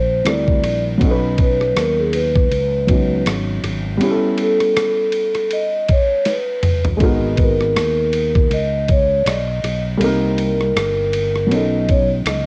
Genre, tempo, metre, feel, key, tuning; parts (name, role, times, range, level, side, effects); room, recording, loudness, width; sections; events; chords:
hip hop, jazz-hop; 80 BPM; 4/4; swing 58% on 16ths; A4 = 440 Hz
vibraphone with soft mallets; melody; 0.0-12.5 s; Ab4 to Eb5; -21 LUFS; equal; cassette tape
dark baby grand piano; accompaniment; 0.0-12.5 s; F#3 to B4; -23 LUFS; equal; cassette tape
fretless electric bass; bass; 0.0-12.5 s; G1 to D#2; -24 LUFS; equal; transformer saturation
dusty soul sampler-style drum kit; drums; 0.3-12.5 s; hi-hat, kick drum, ride cymbal, rim click, snare drum, toms; -23 LUFS; equal; cassette tape
little or no reverb; home recording on cassette; -17 LUFS; mono
0.0-12.5 A section
drum fill 6.3-7.0
0.0 C9; 1.0 Badd9; 4.0 A9; 7.0 Abm9; 10.0 Cm7; 11.5 B9